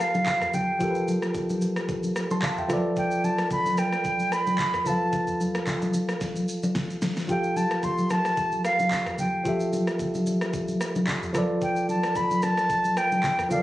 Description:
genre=amapiano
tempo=111 BPM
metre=4/4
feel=swing 55% on 16ths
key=F lydian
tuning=A4 = 440 Hz
part: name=concert flute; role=melody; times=0.0-13.6 s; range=F5 to C6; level=-25 LUFS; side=equal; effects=tape echo
part: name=tine electric piano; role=accompaniment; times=0.0-13.6 s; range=F3 to C6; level=-28 LUFS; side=equal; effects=auto-pan
part: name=smooth R&B drum kit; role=drums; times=0.0-13.6 s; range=handclaps, kick drum, rim click, shaker, snare drum, toms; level=-32 LUFS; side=equal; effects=vintage 12-bit sampler grit
part: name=congas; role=percussion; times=0.1-13.6 s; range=none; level=-30 LUFS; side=left 1 dB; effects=none
room=digital ambience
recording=recorded on a phone in the room, studio ambience, compression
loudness=-23 LUFS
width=side -15 dB against mid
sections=0.0-13.6 A section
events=drum fill 6.2-7.3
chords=0.0 Fadd9; 2.7 G9/F (rootless); 7.3 Fmaj9; 11.3 G9/F

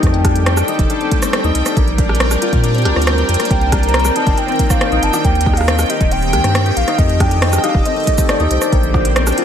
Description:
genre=IDM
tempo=138 BPM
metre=4/4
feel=straight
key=unclear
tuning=A4 = 440 Hz
part: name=warm analog pad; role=sustained chords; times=0.0-9.4 s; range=D3 to Eb5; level=-22 LUFS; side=right 1 dB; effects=chorus
part: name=concert harp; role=arpeggios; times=0.0-9.4 s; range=A3 to G4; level=-21 LUFS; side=left 6 dB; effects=digital delay
part: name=warm sub bass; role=bass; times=0.0-9.3 s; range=Eb1 to Bb2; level=-16 LUFS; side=equal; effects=none
part: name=electronic kick drum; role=drums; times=0.0-9.0 s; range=none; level=-16 LUFS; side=equal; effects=overdrive
part: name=organic electronic drum kit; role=drums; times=0.0-9.4 s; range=hi-hat, rim click, shaker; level=-20 LUFS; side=right 1 dB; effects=overdrive
part: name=bubbling stepped-filter texture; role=texture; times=0.0-9.4 s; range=G5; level=-24 LUFS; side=right 1 dB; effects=chorus, built-in reverb, sidechain pumping
part: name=warbly nostalgic lead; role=melody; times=3.5-9.4 s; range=C5 to Bb5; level=-20 LUFS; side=equal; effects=chorus, tape echo
room=light reverb, digital ambience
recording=none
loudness=-12 LUFS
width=side -8 dB against mid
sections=0.0-9.4 A section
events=none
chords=0.0 F13; 1.8 Bb69; 3.5 Cm9; 5.2 Eb6; 7.0 F13; 8.7 Bb69

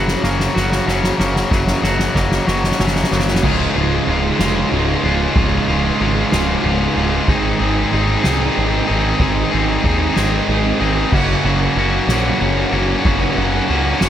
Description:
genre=post-rock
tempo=62 BPM (dotted quarters)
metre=6/8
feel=straight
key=Db major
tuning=A4 = 442 Hz
part: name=warm studio string section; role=sustained chords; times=0.0-3.4 s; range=Gb4 to Bb5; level=-30 LUFS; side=right 2 dB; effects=none
part: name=twangy electric guitar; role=arpeggios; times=0.0-3.4 s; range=Gb2 to Gb4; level=-24 LUFS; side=right 2 dB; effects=tremolo, tape echo
part: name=tight distorted guitar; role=riff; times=0.0-14.1 s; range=Db2 to Ab4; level=-18 LUFS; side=left 5 dB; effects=distortion
part: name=growling picked electric bass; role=bass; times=0.0-14.1 s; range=Db1 to Eb2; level=-21 LUFS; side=equal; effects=overdrive
part: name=soft-mallet drum kit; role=drums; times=0.1-14.1 s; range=crash cymbal, kick drum, ride cymbal, snare drum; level=-20 LUFS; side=right 1 dB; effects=none
part: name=sludgy distorted guitar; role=riff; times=3.4-14.1 s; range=Db2 to Ab4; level=-21 LUFS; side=right 10 dB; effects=overdrive
room=light reverb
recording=none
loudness=-14 LUFS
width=side -10 dB against mid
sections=0.0-3.4 A section; 3.4-14.1 B section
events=build-up 0.0-3.4; drum fill 0.0-3.4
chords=0.0 Gbmaj7; 3.4 Db; 7.3 Ab; 11.1 Gb

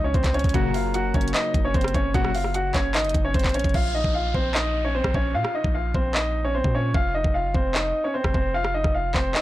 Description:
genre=hip hop, trap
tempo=150 BPM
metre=4/4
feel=half-time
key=Bb minor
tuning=A4 = 440 Hz
part: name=clear baby grand piano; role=melody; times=0.0-9.4 s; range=C4 to Gb5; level=-25 LUFS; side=equal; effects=low-pass filter
part: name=Celtic harp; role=accompaniment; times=0.0-3.8 s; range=Db3 to Bb4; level=-33 LUFS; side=left 3 dB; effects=low-pass filter
part: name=long sustained 808-style bass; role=bass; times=0.0-9.3 s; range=F1 to Bb2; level=-27 LUFS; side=equal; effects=none
part: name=trap drum kit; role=drums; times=0.1-9.4 s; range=crash cymbal, handclaps, hi-hat, kick drum, rim click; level=-24 LUFS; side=equal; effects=overdrive
part: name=big bright polysynth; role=stabs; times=0.5-2.3 s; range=Bb2 to Gb3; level=-32 LUFS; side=left 2 dB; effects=ping-pong delay
part: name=downlifter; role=sound effects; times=3.7-6.9 s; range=none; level=-37 LUFS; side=right 1 dB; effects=none
room=light reverb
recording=blown-out, overdriven recording, overdrive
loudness=-20 LUFS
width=side -15 dB against mid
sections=0.0-3.7 A section; 3.7-9.4 B section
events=hi-hats muted 3.7-9.4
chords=0.0 Db; 0.5 Gb; 3.7 Bbmadd9; 6.9 F5

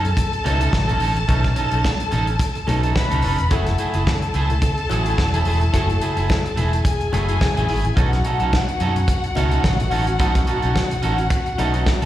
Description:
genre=disco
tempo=108 BPM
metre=4/4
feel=swing 56% on 16ths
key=unclear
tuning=A4 = 439 Hz
part: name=dark studio string section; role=second line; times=0.0-12.1 s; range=F#4 to B5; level=-25 LUFS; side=left 3 dB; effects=tape echo, slapback echo
part: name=electric guitar at the edge of break-up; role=accompaniment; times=0.0-12.1 s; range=A3 to A4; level=-26 LUFS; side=right 5 dB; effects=slapback echo
part: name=fingered electric bass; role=bass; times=0.0-12.1 s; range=E1 to F#2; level=-21 LUFS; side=equal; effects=none
part: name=warm soul drum kit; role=drums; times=0.1-12.1 s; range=hi-hat, kick drum, snare drum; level=-22 LUFS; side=equal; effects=none
part: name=congas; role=percussion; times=0.1-12.1 s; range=none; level=-32 LUFS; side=left 4 dB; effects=none
part: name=mellow clav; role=accompaniment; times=0.4-12.1 s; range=B2 to C#5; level=-28 LUFS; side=left 2 dB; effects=phaser, slapback echo
room=light reverb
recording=live gig heard through the venue's PA, recital hall reverb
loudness=-17 LUFS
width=side -13 dB against mid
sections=0.0-12.1 A section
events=none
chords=0.0 B9; 3.5 F#m9; 8.0 B9

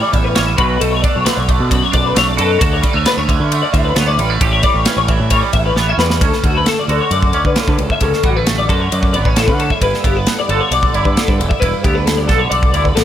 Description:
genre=math rock and midwest emo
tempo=133 BPM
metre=4/4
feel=straight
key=D major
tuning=A4 = 442 Hz
part: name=twangy electric guitar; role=accompaniment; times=0.0-13.0 s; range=D2 to A4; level=-20 LUFS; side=right 9 dB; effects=analog chorus
part: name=twelve-string electric guitar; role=arpeggios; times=0.0-13.0 s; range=F#4 to E5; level=-17 LUFS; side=left 6 dB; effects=ensemble chorus, tape echo
part: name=growling fingered electric bass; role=bass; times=0.1-13.0 s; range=E1 to D3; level=-18 LUFS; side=equal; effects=overdrive
part: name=modern studio drum kit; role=drums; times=0.1-13.0 s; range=kick drum, ride cymbal, snare drum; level=-17 LUFS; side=equal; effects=none
room=little or no reverb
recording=none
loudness=-12 LUFS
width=side -10 dB against mid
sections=0.0-6.2 A section; 6.2-13.0 B section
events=drum fill 5.8-6.2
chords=0.0 A7; 0.6 Bm7; 2.6 Dmaj7; 4.4 A7; 6.2 Dmaj7; 9.8 G69

